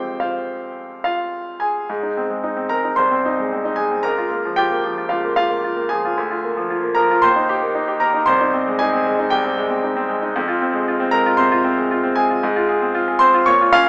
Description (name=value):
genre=classical, virtuoso piano study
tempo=114 BPM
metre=4/4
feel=rubato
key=Ab major, F minor from 10.4 s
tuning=A4 = 439 Hz
part: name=clear concert grand piano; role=solo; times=0.0-13.9 s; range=C2 to Db6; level=-16 LUFS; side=equal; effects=none
room=moderate recital hall reverb, RT60 1.5 s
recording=small speaker sound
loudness=-16 LUFS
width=side -30 dB against mid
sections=0.0-1.9 A section; 1.9-13.9 B section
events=none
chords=0.0 Fm; 1.9 Ab; 3.0 Ab/C; 4.0 Bbm/Db; 6.2 Bb7/D; 7.2 Eb; 8.3 Ab/C; 10.4 Fm; 12.4 Fm/Ab